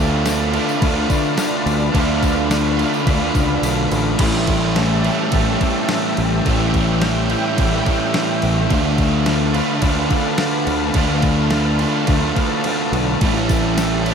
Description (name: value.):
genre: rock, shoegaze and dream pop.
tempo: 106 BPM.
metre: 4/4.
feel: straight.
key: A mixolydian.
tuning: A4 = 443 Hz.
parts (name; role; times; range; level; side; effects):
analog string pad; sustained chords; 0.0-14.1 s; D4 to B5; -26 LUFS; left 2 dB; ensemble chorus.
overdriven semi-hollow guitar; riff; 0.0-14.1 s; A2 to F4; -21 LUFS; right 12 dB; reverse reverb.
thick fuzz guitar; riff; 0.0-14.1 s; A2 to D4; -21 LUFS; left 12 dB; distortion, lush chorus.
growling fingered electric bass; bass; 0.0-14.1 s; A1 to D2; -21 LUFS; equal; overdrive.
crisp 8-bit digital drum machine; drums; 0.3-14.1 s; crash cymbal, kick drum, snare drum; -22 LUFS; equal; none.
tambourine; percussion; 0.3-4.1, 13.4-13.9 s; none; -35 LUFS; left 8 dB; none.
room: light reverb.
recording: none.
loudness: -15 LUFS.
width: side -6 dB against mid.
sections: 0.0-4.2 A section; 4.2-14.1 A section.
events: kick and snare drop out 3.6-4.2, 12.7-13.2.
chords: 0.0 Dm6; 4.2 A5; 8.7 Dm6; 13.2 A5.